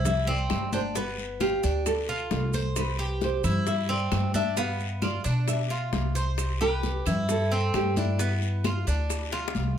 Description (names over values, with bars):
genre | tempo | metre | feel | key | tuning
latin, Cuban son and guajira | 133 BPM | 4/4 | straight | C major | A4 = 440 Hz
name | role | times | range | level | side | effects
nylon-string guitar | melody | 0.0-9.5 s | E4 to F5 | -30 LUFS | equal | none
Cuban tres | arpeggios | 0.0-9.8 s | B3 to C5 | -32 LUFS | right 3 dB | none
upright bass | bass | 0.0-9.8 s | G1 to B2 | -28 LUFS | equal | none
congas | percussion | 0.0-9.8 s | none | -34 LUFS | left 2 dB | none
bongos | percussion | 0.1-9.6 s | none | -37 LUFS | left 7 dB | none
guiro | percussion | 0.1-9.8 s | none | -42 LUFS | left 7 dB | none
maracas | percussion | 0.1-9.8 s | none | -40 LUFS | right 9 dB | none
claves | percussion | 0.5-9.3 s | none | -40 LUFS | right 7 dB | none
room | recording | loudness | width
moderate studio reverb, RT60 0.8 s | none | -24 LUFS | side -9 dB against mid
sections
0.0-9.8 A section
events
drum fill 9.3-9.8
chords
0.0 C; 1.0 G9; 2.8 Cmaj7; 4.6 G6; 6.4 Cmaj7; 8.2 G6